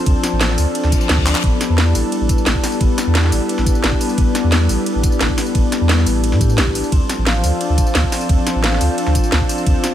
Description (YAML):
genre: liquid drum and bass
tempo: 175 BPM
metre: 4/4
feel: straight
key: D dorian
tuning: A4 = 440 Hz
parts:
  - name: lush unison pad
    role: sustained chords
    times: 0.0-9.9 s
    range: F3 to A4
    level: -23 LUFS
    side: equal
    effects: chorus
  - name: vibraphone with medium mallets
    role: arpeggios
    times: 0.0-9.9 s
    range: B3 to F5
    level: -22 LUFS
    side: left 4 dB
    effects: analog delay
  - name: warm sub bass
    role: bass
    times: 0.1-9.7 s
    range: A1 to A2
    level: -16 LUFS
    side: equal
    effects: none
  - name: electronic kick drum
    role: drums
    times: 0.1-9.7 s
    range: none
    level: -18 LUFS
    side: equal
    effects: none
  - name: garage drum kit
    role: drums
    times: 0.1-9.9 s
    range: handclaps, hi-hat, ride cymbal, snare drum, tambourine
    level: -21 LUFS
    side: equal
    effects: none
  - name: reverse cymbal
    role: sound effects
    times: 0.9-1.4 s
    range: none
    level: -28 LUFS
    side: left 5 dB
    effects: none
room: light reverb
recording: echo-heavy mix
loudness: -14 LUFS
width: side -11 dB against mid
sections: 0.0-9.9 A section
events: reverse cymbal 0.9-1.4; drum fill 1.3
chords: 0.0 Dm7; 1.4 A9sus4; 6.9 Dm7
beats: | 0.06 0.41 0.75 1.09 | 1.44 1.78 2.12 2.46 | 2.81 3.15 3.49 3.83 | 4.18 4.52 4.86 5.21 | 5.55 5.89 6.24 6.58 | 6.92 7.26 7.61 7.95 | 8.29 8.63 8.98 9.32 | 9.66